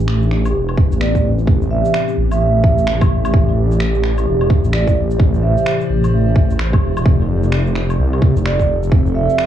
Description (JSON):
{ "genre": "future garage", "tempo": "129 BPM", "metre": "4/4", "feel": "swing 61% on 16ths", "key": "A minor", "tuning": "A4 = 444 Hz", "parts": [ { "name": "muted felt-like synth keys", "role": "accompaniment", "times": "0.0-9.5 s", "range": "B3 to G4", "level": "-27 LUFS", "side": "left 2 dB", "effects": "chorus, sidechain pumping, low-pass filter, dub echo" }, { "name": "warbly tape-like pad", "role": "sustained chords", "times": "0.0-9.5 s", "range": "A2 to E5", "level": "-22 LUFS", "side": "left 2 dB", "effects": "chorus, built-in reverb, phaser, sidechain pumping" }, { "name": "swelling detuned saw bass", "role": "bass", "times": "0.0-9.3 s", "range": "E1 to C2", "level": "-16 LUFS", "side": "equal", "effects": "sidechain pumping" }, { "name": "electronic finger snaps, shaker and woodblock", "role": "drums", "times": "0.1-9.5 s", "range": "none", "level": "-27 LUFS", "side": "left 1 dB", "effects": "overdrive" }, { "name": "electronic kick drum", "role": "drums", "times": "0.8-9.0 s", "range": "none", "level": "-14 LUFS", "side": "equal", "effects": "overdrive" }, { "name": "vibraphone with soft mallets", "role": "melody", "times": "1.0-9.4 s", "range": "D5 to E5", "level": "-21 LUFS", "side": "right 5 dB", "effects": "dub echo" } ], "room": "little or no reverb", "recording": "echo-heavy mix, cassette tape, small room reverb", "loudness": "-13 LUFS", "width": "side -10 dB against mid", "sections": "0.0-9.5 A section", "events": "none", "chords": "0.0 Am11; 7.1 Fmaj7" }